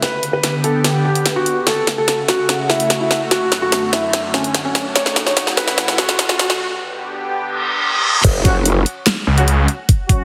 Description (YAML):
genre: heavy wobble dubstep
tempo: 146 BPM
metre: 4/4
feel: half-time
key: F# phrygian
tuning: A4 = 440 Hz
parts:
  - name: felt-muted upright piano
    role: melody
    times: 0.0-6.5 s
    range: C#4 to C#5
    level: -22 LUFS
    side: equal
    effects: digital delay
  - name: lush unison pad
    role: sustained chords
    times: 0.0-8.2 s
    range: F#2 to G4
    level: -25 LUFS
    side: equal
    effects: chorus, phaser, vintage 12-bit sampler grit, sidechain pumping
  - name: dubstep drum kit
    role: drums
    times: 0.0-10.2 s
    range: crash cymbal, handclaps, hi-hat, snare drum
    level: -20 LUFS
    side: equal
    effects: high-pass filter on snare, high-pass filter on hats, high-pass filter on cymbals
  - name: riser and reverse cymbal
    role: sound effects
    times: 3.3-8.2 s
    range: none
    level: -24 LUFS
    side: equal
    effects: none
  - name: growl bass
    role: bass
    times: 8.2-8.8 s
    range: F#1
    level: -18 LUFS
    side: equal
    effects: chorus, overdrive
  - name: electronic kick drum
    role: drums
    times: 8.2-10.2 s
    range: none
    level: -16 LUFS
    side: equal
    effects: none
  - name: mellow brass ensemble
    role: stabs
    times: 8.4-10.2 s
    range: F#3 to F#4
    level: -25 LUFS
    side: equal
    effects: digital delay
  - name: snarling distorted saw bass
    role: bass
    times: 9.3-9.7 s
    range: C#2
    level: -15 LUFS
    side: equal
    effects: distortion, overdrive
room: wet lush hall reverb, RT60 2.1 s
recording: heavily compressed radio sound, high-pass filter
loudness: -17 LUFS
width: mono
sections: 0.0-8.2 A section; 8.2-10.2 B section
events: build-up 0.0-8.2; drum fill 0.0-6.6; break 6.6-8.2; reverse cymbal 7.5-8.2; drop 8.2-10.2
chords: 0.0 G; 1.7 F#m; 3.3 D/F#; 5.0 F#m; 6.6 G; 8.2 F#5